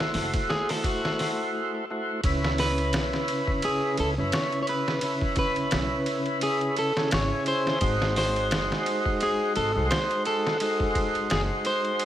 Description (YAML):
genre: trip hop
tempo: 86 BPM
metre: 4/4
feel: swing 56% on 16ths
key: C# harmonic minor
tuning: A4 = 440 Hz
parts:
  - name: tonewheel organ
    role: accompaniment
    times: 0.0-12.1 s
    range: C#3 to C5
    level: -27 LUFS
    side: equal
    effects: slow rotary speaker, harmonic tremolo, vintage 12-bit sampler grit
  - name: trip hop sampler-style drum kit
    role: drums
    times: 0.0-12.1 s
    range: hi-hat, kick drum, ride cymbal, snare drum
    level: -30 LUFS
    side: equal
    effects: studio reverb
  - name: upright bass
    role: bass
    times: 0.1-11.5 s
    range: F#1 to F#2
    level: -30 LUFS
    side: equal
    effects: none
  - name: electric guitar at the edge of break-up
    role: melody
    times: 0.5-12.1 s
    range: F#4 to C#5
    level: -29 LUFS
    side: equal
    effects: vintage 12-bit sampler grit, tape echo
room: moderate spring reverb, RT60 2.4 s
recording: none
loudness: -23 LUFS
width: side -11 dB against mid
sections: 0.0-2.2 A section; 2.2-12.1 B section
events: break 1.5-2.2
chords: 0.0 Am6; 2.2 C#m7; 7.8 G#7